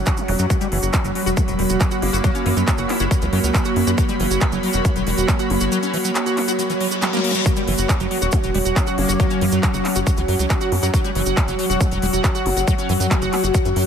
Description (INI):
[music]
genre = psychedelic trance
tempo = 138 BPM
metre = 4/4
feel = straight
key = F# major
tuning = A4 = 445 Hz
[part]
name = evolving wavetable pad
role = sustained chords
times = 0.0-13.9 s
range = F#3 to F#4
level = -24 LUFS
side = right 1 dB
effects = chorus, built-in reverb, sidechain pumping
[part]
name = tight sequencer bass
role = bass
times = 0.0-13.8 s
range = E1 to F#2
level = -22 LUFS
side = equal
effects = none
[part]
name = airy breathy pad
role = texture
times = 0.0-13.9 s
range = F#4 to B5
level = -26 LUFS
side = right 1 dB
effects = chorus, sidechain pumping
[part]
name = liquid acid bass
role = riff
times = 0.1-13.8 s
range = E3 to F#4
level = -25 LUFS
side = moving between left 4 dB and right 3 dB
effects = chorus, auto-pan, sidechain pumping, ping-pong delay
[part]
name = big-room dance drum kit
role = drums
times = 0.1-13.8 s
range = handclaps, hi-hat, snare drum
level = -27 LUFS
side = equal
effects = overdrive
[part]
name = electronic kick drum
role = drums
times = 0.1-13.6 s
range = none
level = -20 LUFS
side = equal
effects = overdrive
[part]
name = cabasa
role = percussion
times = 0.1-13.7 s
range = none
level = -31 LUFS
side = right 5 dB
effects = none
[part]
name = zap and reverse cymbal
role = sound effects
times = 0.3-0.4, 6.8-7.5 s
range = none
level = -30 LUFS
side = left 4 dB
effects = none
[part]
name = metallic wobble bass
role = second line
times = 2.0-3.1, 9.0-11.0 s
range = F#3 to E4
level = -35 LUFS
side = left 2 dB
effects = none
[sound]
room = light reverb, digital ambience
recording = none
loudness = -17 LUFS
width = side -8 dB against mid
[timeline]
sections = 0.0-13.9 A section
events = reverse cymbal 6.8-7.5; drum fill 7.0-7.5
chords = 0.0 F#5